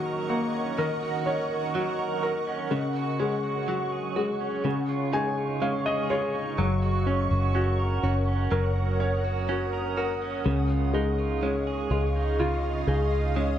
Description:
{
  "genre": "pop ballad",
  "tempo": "62 BPM",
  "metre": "4/4",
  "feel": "straight",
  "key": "unclear",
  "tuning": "A4 = 440 Hz",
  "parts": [
    { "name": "clear grand piano", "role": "accompaniment", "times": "0.0-13.6 s", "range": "C#3 to G#5", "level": "-28 LUFS", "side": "left 3 dB", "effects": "none" },
    { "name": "ethereal airy pad", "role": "sustained chords", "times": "0.0-13.6 s", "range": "G#4 to D#6", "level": "-32 LUFS", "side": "right 2 dB", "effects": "ensemble chorus, built-in reverb, tremolo" },
    { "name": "direct-recorded clean electric guitar", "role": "arpeggios", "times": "0.0-13.6 s", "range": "C#3 to A#4", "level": "-33 LUFS", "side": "right 8 dB", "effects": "tremolo" },
    { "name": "vintage muted fingered electric bass", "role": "bass", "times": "6.6-13.6 s", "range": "F#1 to C#2", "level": "-26 LUFS", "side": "equal", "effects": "none" }
  ],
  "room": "light reverb, digital ambience",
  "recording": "none",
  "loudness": "-24 LUFS",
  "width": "side -10 dB against mid",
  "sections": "0.0-13.6 A section",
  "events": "grand piano fill 4.7-6.6",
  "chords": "0.0 D#m7; 2.7 C#sus4; 4.7 C#add9; 6.6 F#; 10.5 C#add9"
}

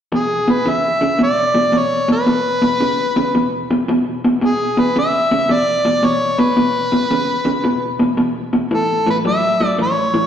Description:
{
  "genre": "blues",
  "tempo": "112 BPM",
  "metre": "4/4",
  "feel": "swing 66% on 8ths",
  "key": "E mixolydian",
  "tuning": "A4 = 441 Hz",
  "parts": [
    { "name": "electric guitar through a small old amp", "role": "riff", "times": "0.1-10.3 s", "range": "E2 to F#3", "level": "-17 LUFS", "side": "equal", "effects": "slapback echo" },
    { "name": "overdriven harmonica", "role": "melody", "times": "0.2-10.3 s", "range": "G#4 to E5", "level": "-17 LUFS", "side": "equal", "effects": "slapback echo" }
  ],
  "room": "moderate plate reverb, RT60 3.5 s",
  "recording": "live gig heard through the venue's PA, recital hall reverb",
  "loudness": "-14 LUFS",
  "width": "side -9 dB against mid",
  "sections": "0.1-10.3 A section",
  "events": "none",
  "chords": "0.1 E5; 8.7 A"
}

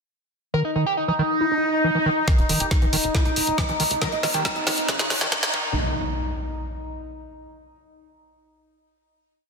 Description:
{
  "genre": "psychedelic trance",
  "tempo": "138 BPM",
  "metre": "4/4",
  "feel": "straight",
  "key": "unclear",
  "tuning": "A4 = 441 Hz",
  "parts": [
    { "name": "overdriven synth lead", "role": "melody", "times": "0.5-5.7 s", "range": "Eb4 to Bb4", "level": "-26 LUFS", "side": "right 1 dB", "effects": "distortion, phaser, sidechain pumping, tape echo" },
    { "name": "overtone-sweeping drone", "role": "sustained chords", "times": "1.0-5.5 s", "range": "Eb4", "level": "-28 LUFS", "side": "left 1 dB", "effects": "chorus, built-in reverb, sidechain pumping" },
    { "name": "overdriven acid bass", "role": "riff", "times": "0.5-5.7 s", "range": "Db3 to Fb4", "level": "-28 LUFS", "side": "right 1 dB", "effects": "auto-pan, sidechain pumping, dub echo" },
    { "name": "swell, riser and impact", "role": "sound effects", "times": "1.6-7.3 s", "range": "none", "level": "-30 LUFS", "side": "left 1 dB", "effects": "none" },
    { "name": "drum and bass drum kit", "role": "drums", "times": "2.3-5.5 s", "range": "hi-hat, snare drum", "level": "-24 LUFS", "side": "equal", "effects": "overdrive, low-pass filter on snare, studio reverb, low-pass filter on hats" },
    { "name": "electronic kick drum", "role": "drums", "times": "2.3-5.6 s", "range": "none", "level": "-22 LUFS", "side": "equal", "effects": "overdrive, studio reverb" },
    { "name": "tight sequencer bass", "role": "bass", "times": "2.4-5.7 s", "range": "Eb1 to Db2", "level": "-32 LUFS", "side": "equal", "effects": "tube saturation" }
  ],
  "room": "moderate lush hall reverb, RT60 1.8 s, digital ambience",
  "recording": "dense, heavily limited modern master, high-pass filter",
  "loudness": "-20 LUFS",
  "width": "side -5 dB against mid",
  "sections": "0.5-2.3 intro; 2.3-5.8 build; 5.8-7.5 final hit",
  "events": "swell 1.6-2.3; build-up 2.3-5.8; drum fill 2.3-5.8; filter sweep on acid bass 2.3-5.8; filter sweep on analog synth lead 2.3-5.8; filter sweep 2.3-5.8; riser 3.9-5.8",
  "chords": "0.5 N.C.; 2.3 Eb7(no3); 5.5 N.C."
}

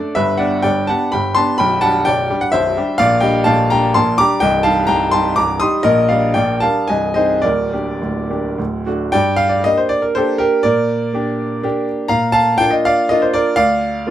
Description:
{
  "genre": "classical, romantic triple-time dance for piano with dotted rhythms",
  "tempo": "103-135 BPM",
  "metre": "3/4",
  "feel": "rubato",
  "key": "G major, G minor from 3.0 s",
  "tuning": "A4 = 439 Hz",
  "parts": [
    { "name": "clear grand piano", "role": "solo", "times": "0.0-14.1 s", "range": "B0 to Eb6", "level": "-13 LUFS", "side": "equal", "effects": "none" }
  ],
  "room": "light reverb",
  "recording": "none",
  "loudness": "-13 LUFS",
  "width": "side -12 dB against mid",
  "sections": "0.0-9.1 A section; 9.1-14.1 B section",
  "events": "none",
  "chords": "0.2 G; 1.6 G/B; 3.0 Gm/Bb; 4.4 Cm; 5.9 Gm/Bb; 6.9 Ab/C; 7.4 Gm/D; 8.6 D; 9.1 Gm; 10.7 Gm/Bb; 12.1 Bb; 13.6 Bb/D (rootless)"
}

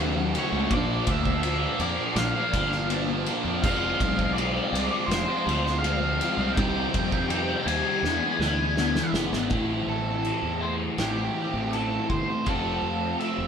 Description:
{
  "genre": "quiet-loud alternative rock",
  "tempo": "82 BPM",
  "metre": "4/4",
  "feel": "straight",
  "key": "A minor from 9.5 s",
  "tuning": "A4 = 439 Hz",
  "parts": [
    { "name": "rich chamber string section", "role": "sustained chords", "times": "0.0-9.5 s", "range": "G3 to F#5", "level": "-39 LUFS", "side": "left 1 dB", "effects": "none" },
    { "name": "crunchy overdriven guitar", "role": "riff", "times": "0.0-13.5 s", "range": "F#2 to G#4", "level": "-29 LUFS", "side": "left 4 dB", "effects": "phaser" },
    { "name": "distorted electric guitar", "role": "riff", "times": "0.0-13.5 s", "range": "F2 to F4", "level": "-32 LUFS", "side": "right 9 dB", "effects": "overdrive" },
    { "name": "fuzz fingered electric bass", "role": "bass", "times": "0.0-13.5 s", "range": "F1 to F2", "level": "-30 LUFS", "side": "right 1 dB", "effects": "overdrive" },
    { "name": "loose indie drum kit", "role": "drums", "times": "0.3-13.4 s", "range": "crash cymbal, kick drum, ride cymbal, snare drum", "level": "-30 LUFS", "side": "equal", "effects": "none" },
    { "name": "octave-fuzz lead guitar", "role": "melody", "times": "0.4-13.5 s", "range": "G4 to G#5", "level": "-30 LUFS", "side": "equal", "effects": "distortion" }
  ],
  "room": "moderate studio reverb, RT60 0.9 s",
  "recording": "band playing live in one room",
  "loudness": "-23 LUFS",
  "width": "side -7 dB against mid",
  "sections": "0.0-9.5 A section; 9.5-13.5 B section",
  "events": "drum fill 8.0-9.5; lead electric guitar solo 9.5-13.5",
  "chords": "0.0 F#m; 0.7 Bb; 3.6 Fm; 6.6 Cm; 8.0 E7; 9.5 Am; 12.5 F"
}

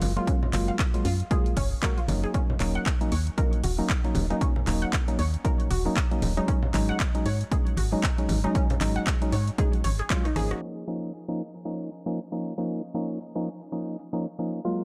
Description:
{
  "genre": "deep house",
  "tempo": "116 BPM",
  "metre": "4/4",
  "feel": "swing 58% on 16ths",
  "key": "unclear",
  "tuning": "A4 = 440 Hz",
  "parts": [
    { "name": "percussive organ stab", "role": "stabs", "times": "0.0-14.8 s", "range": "F3 to Gb4", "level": "-32 LUFS", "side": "equal", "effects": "chorus, sidechain pumping, digital delay" },
    { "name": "organ-like FM bass", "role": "bass", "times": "0.0-10.5 s", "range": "Eb1 to Ab2", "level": "-29 LUFS", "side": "equal", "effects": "sidechain pumping" },
    { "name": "house drum kit", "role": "drums", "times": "0.0-14.8 s", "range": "crash cymbal, handclaps, hi-hat, rim click, shaker", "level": "-36 LUFS", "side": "equal", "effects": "none" },
    { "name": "congas", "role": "percussion", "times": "0.0-10.5 s", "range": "none", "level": "-37 LUFS", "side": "equal", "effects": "none" },
    { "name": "warbly dusty pluck", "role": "arpeggios", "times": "0.2-10.6 s", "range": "Db4 to Gb5", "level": "-38 LUFS", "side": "equal", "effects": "lush chorus, sidechain pumping, delay" },
    { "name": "electronic kick drum", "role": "drums", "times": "0.3-10.2 s", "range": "none", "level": "-29 LUFS", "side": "equal", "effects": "none" }
  ],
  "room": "light reverb, digital ambience",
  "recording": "low-pass filter",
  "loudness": "-27 LUFS",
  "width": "mono",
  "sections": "0.0-10.6 A section; 10.6-14.8 B section",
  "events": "drum fill 10.1-10.6; band accent 10.5; filter sweep 10.6-14.8",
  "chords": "0.0 Gbmaj9; 2.3 Ebm7; 6.5 Ab7sus4; 10.6 Db69"
}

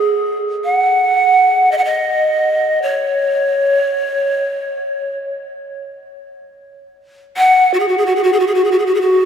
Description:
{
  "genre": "world meditative, free-time meditation music",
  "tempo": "free time",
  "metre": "none",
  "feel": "none",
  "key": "unclear",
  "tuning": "A4 = 440 Hz",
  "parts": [
    { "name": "breathy large pan pipes", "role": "solo", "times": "0.0-9.3 s", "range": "F#4 to F#5", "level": "-13 LUFS", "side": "equal", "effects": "diffuse ambient delay" }
  ],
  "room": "wet cathedral reverb, RT60 5.5 s",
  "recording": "dreamy mix soaked in reverb",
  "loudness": "-12 LUFS",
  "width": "side -8 dB against mid",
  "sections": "0.0-9.3 A section",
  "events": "none",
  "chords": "none"
}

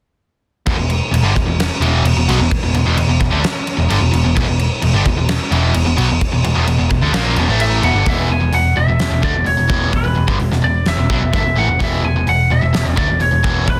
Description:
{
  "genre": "hard rock",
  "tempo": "129 BPM",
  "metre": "4/4",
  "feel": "straight",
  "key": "unclear",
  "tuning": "A4 = 441 Hz",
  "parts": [
    { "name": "distorted electric guitar", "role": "riff", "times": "0.7-13.8 s", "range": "E2 to A#3", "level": "-23 LUFS", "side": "equal", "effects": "overdrive" },
    { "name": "overdriven semi-hollow guitar", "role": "riff", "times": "0.7-13.8 s", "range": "E2 to A#3", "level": "-23 LUFS", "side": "equal", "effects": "phaser" },
    { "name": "hollow-body short-scale picked electric bass", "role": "bass", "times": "0.7-13.8 s", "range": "E1 to D2", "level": "-20 LUFS", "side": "equal", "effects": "none" },
    { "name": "big rock drum kit", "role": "drums", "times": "0.7-13.8 s", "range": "crash cymbal, hi-hat, kick drum, snare drum", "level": "-22 LUFS", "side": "equal", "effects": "none" },
    { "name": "lightly driven lead guitar", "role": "melody", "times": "7.6-13.8 s", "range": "B4 to G#5", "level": "-21 LUFS", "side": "equal", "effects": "none" }
  ],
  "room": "light reverb, studio ambience",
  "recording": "dense, heavily limited modern master",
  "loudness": "-16 LUFS",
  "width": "mono",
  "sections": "0.7-8.1 A section; 8.1-13.8 B section",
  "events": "none",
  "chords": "0.7 E5"
}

